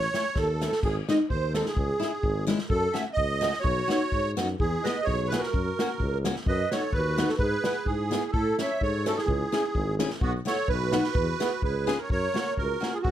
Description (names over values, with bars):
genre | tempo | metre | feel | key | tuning
alpine folk, alpine dance band | 128 BPM | 2/4 | swing 54% on 8ths, rubato | E major | A4 = 439 Hz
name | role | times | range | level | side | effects
musette accordion | melody | 0.0-13.1 s | F#4 to E5 | -28 LUFS | right 3 dB | slapback echo
mellow tuba | bass | 0.0-13.1 s | G#1 to A2 | -30 LUFS | left 1 dB | none
unplugged drum kit | drums | 0.0-13.1 s | crash cymbal, hi-hat, kick drum, snare drum | -30 LUFS | equal | none
picked steel-string acoustic guitar | accompaniment | 0.1-12.9 s | G#3 to A4 | -29 LUFS | left 3 dB | none
warm clarinet | second line | 3.6-13.1 s | B3 to C#5 | -34 LUFS | right 2 dB | none
room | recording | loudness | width
light reverb | dark, warm production | -24 LUFS | side -11 dB against mid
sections
0.0-12.1 A section; 12.1-13.1 B section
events
drum fill 0.4-0.8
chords
0.0 A; 0.8 G#; 1.8 C#m; 2.7 F#m; 3.6 Badd9; 4.6 E; 5.5 F#; 6.5 B/F#; 7.4 E/G#; 8.3 A; 9.3 C#m; 10.2 Bsus4; 10.7 B; 11.1 E; 11.6 C#7; 12.1 F#